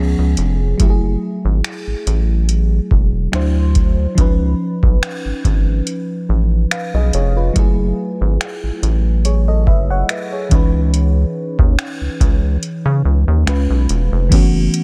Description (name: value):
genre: contemporary R&B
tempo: 71 BPM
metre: 4/4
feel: swing 54% on 16ths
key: F# dorian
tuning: A4 = 441 Hz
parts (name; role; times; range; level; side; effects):
- mellow FM electric piano; accompaniment; 0.0-14.8 s; E3 to F#5; -23 LUFS; equal; chorus
- rubbery square bass; bass; 0.0-14.7 s; E1 to C#3; -18 LUFS; equal; none
- booming analog drum machine; drums; 0.4-14.8 s; crash cymbal, finger snaps, hi-hat, kick drum; -18 LUFS; equal; overdrive, vintage 12-bit sampler grit, soft clipping on snare
room: little or no reverb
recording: dense, heavily limited modern master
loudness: -16 LUFS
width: mono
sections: 0.0-14.3 A section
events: none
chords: 0.0 C#7; 0.8 F#m9; 3.3 D9; 4.2 C#9; 7.6 F#m9; 10.5 C#m9; 13.5 C#7; 14.3 B9sus4/F#